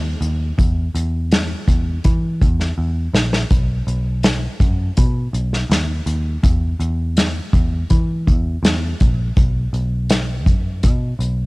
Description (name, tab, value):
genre	indie pop, bedroom pop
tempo	82 BPM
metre	4/4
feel	straight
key	B major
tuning	A4 = 438 Hz
part	vintage muted picked electric bass	bass	0.0-11.5 s	A#1 to E3	-20 LUFS	equal	none
part	unplugged drum kit	drums	0.2-11.4 s	hi-hat, kick drum, snare drum	-17 LUFS	equal	cassette tape
room	little or no reverb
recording	home recording on cassette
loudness	-16 LUFS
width	side -25 dB against mid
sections	0.0-11.5 A section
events	drum fill 2.8-3.5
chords	none